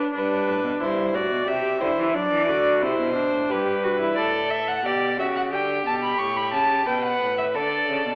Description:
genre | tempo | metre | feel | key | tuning
classical, baroque-style fugue for string quartet | 89 BPM | 3/4 | straight | G major | A4 = 440 Hz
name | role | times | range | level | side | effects
clear violin | second line | 0.0-8.2 s | F#4 to E5 | -27 LUFS | equal | none
rich viola | accompaniment | 0.0-4.2 s | D4 to G4 | -28 LUFS | equal | none
rich cello | bass | 0.1-8.1 s | G2 to F#3 | -31 LUFS | equal | none
clear violin | melody | 4.2-8.2 s | D5 to C#6 | -27 LUFS | equal | none
room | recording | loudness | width
wet recital hall reverb, RT60 1.6 s | vinyl crackle, telephone sound | -23 LUFS | mono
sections
0.0-8.2 A section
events
none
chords
0.1 G; 1.5 C; 2.2 D7; 3.5 G; 4.2 D/A; 5.5 G/D; 6.2 A7; 7.5 D5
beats
| 0.14 0.81 1.48 | 2.15 2.83 3.50 | 4.17 4.85 5.52 | 6.19 6.87 7.54

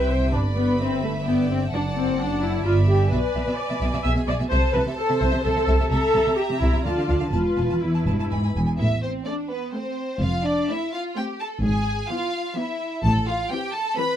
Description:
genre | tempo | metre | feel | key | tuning
quick classical-period movement for string orchestra | 128 BPM | 3/4 | straight | A minor from 3.1 s | A4 = 440 Hz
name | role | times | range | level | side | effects
rich studio violin section | melody | 0.0-14.2 s | G#4 to B5 | -31 LUFS | left 1 dB | none
clear studio violin section | second line | 0.0-14.2 s | B3 to B5 | -30 LUFS | equal | none
clear studio viola section | accompaniment | 0.0-14.2 s | E3 to E5 | -24 LUFS | left 1 dB | none
rich studio cello section | bass | 0.0-13.4 s | E2 to D3 | -27 LUFS | equal | none
warm studio double bass section | bass | 0.0-13.4 s | E1 to D2 | -24 LUFS | right 1 dB | none
room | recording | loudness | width
light reverb | dark, warm production | -20 LUFS | side -10 dB against mid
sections
0.0-8.8 A section; 8.8-14.2 B section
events
none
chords
0.3 G; 1.7 D/F#; 2.6 G; 3.1 E7/B; 4.5 Am/C; 5.9 C7; 6.8 Dm; 7.3 Esus4; 8.3 E; 8.8 Am; 10.2 F; 11.6 E/G#; 13.0 Am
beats
| 0.32 0.79 1.26 | 1.72 2.18 2.64 | 3.11 3.57 4.03 | 4.50 4.97 5.43 | 5.90 6.37 6.84 | 7.33 7.82 8.31 | 8.79 9.27 9.74 | 10.21 10.69 11.16 | 11.63 12.10 12.57 | 13.04 13.50 13.97

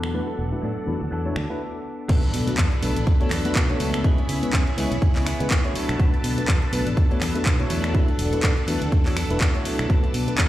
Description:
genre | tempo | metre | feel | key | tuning
filtered disco house | 123 BPM | 4/4 | swing 57% on 16ths | B dorian | A4 = 441 Hz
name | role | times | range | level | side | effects
string machine, full ensemble | sustained chords | 0.0-10.5 s | D4 to D6 | -32 LUFS | left 1 dB | phaser, ensemble chorus, sidechain pumping, low-pass filter
clean electric guitar | riff | 0.0-10.5 s | F#3 to A4 | -31 LUFS | right 1 dB | sidechain pumping, low-pass filter
fingered electric bass | bass | 0.0-10.5 s | E1 to C#3 | -27 LUFS | equal | tube saturation, sidechain pumping, low-pass filter
house drum kit | drums | 0.0-10.5 s | crash cymbal, finger snaps, handclaps, hi-hat | -28 LUFS | equal | sidechain pumping on hats, sidechain pumping on cymbals
mellow tine electric piano | accompaniment | 0.1-10.5 s | G#3 to C#5 | -29 LUFS | left 1 dB | phaser, sidechain pumping, low-pass filter
electronic kick drum | drums | 2.1-10.5 s | none | -20 LUFS | equal | none
impact | sound effects | 2.1-4.0 s | none | -31 LUFS | equal | none
room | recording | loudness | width
light reverb, digital ambience | played on a big sound system in a bare room, large studio reverb | -20 LUFS | side -14 dB against mid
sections
0.0-2.1 A section; 2.1-10.5 B section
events
filter sweep 0.0-2.1; stop 1.6-2.1; drop 2.1-10.5; impact 2.1-4.0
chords
0.0 E9sus4; 2.1 Bm7; 4.0 C#m7; 5.8 Bm7; 7.7 E9sus4; 9.9 Bm7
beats
| 0.14 0.63 1.12 1.60 | 2.09 2.58 3.07 3.56 | 4.04 4.53 5.02 5.51 | 6.00 6.48 6.97 7.46 | 7.95 8.43 8.92 9.41 | 9.90 10.38

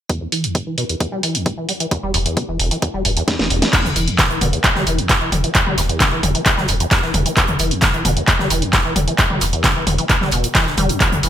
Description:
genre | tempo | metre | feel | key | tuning
driving peak-time techno | 132 BPM | 4/4 | straight | E minor | A4 = 440 Hz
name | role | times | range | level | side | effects
acid bass, saw | riff | 0.1-11.3 s | E1 to G3 | -22 LUFS | equal | wide subtle chorus, sidechain pumping, ping-pong delay
electronic kick drum | drums | 0.1-11.1 s | none | -19 LUFS | equal | high-pass filter on kick
techno drum kit | drums | 0.1-11.3 s | crash cymbal, handclaps, hi-hat, snare drum, toms | -17 LUFS | equal | sidechain pumping on hats, sidechain pumping on cymbals, sidechain pumping on toms, gated reverb
saturated sub bass | bass | 2.0-11.3 s | E1 | -23 LUFS | equal | tube saturation, sidechain pumping, low-pass filter
modern studio drum kit | drums | 3.7-11.3 s | hi-hat, snare drum | -27 LUFS | right 3 dB | high-pass filter on hats, high-pass filter on snare, high-pass filter on room, gated reverb
room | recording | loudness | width
light reverb, digital ambience | bright 1980s-style digital production | -15 LUFS | side -10 dB against mid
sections
0.1-3.7 A section; 3.7-11.3 B section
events
filter sweep on acid bass 0.1-3.7, 3.7-11.3; drum fill 3.3-3.7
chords
0.1 E5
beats
| 0.10 0.55 1.00 1.46 | 1.91 2.37 2.82 3.28 | 3.73 4.19 4.64 5.10 | 5.55 6.00 6.46 6.91 | 7.37 7.82 8.28 8.73 | 9.19 9.64 10.10 10.55 | 11.01

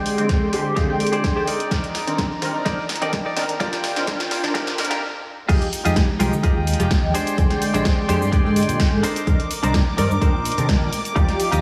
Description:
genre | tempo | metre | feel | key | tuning
filtered disco house | 127 BPM | 4/4 | swing 53% on 16ths | C minor | A4 = 440 Hz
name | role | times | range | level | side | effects
funky polysynth comp | accompaniment | 0.0-11.6 s | D3 to G5 | -27 LUFS | equal | chorus, phaser, sidechain pumping, low-pass filter
warm chamber string section | sustained chords | 0.0-11.6 s | Ab3 to D6 | -30 LUFS | equal | sidechain pumping, low-pass filter
direct-recorded clean electric guitar | riff | 0.0-11.6 s | D4 to F5 | -30 LUFS | equal | sidechain pumping, low-pass filter
punchy analog drum machine | drums | 0.1-11.6 s | cabasa, crash cymbal, hi-hat, snare drum | -30 LUFS | equal | overdrive, sidechain pumping on perc, high-pass filter on perc, high-pass filter on snare, sidechain pumping on hats, high-pass filter on hats, sidechain pumping on cymbals, high-pass filter on cymbals, high-pass filter on room
fingered electric bass | bass | 0.2-11.6 s | F1 to D3 | -26 LUFS | equal | sidechain pumping, high-pass filter, low-pass filter
electronic kick drum | drums | 0.3-11.3 s | none | -23 LUFS | equal | overdrive
room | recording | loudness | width
wet lush hall reverb, RT60 2.0 s, digital ambience | dreamy mix soaked in reverb, high-pass filter, small room ambience | -20 LUFS | mono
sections
0.0-5.5 A section; 5.5-11.6 B section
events
build-up 0.0-5.5; drum fill 0.0-5.0; filter sweep 0.0-5.5; stop 5.0-5.5; drop 5.5-11.6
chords
0.0 Bb13; 1.5 Cm9; 3.6 Ebmaj9; 5.5 Fm9; 7.1 Bb13; 9.0 Cm9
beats
0.30 0.77 1.24 | 1.71 2.19 2.66 3.13 | 3.60 4.08 4.55 5.02 | 5.49 5.96 6.44 6.91 | 7.38 7.86 8.33 8.80 | 9.27 9.74 10.22 10.69 | 11.16

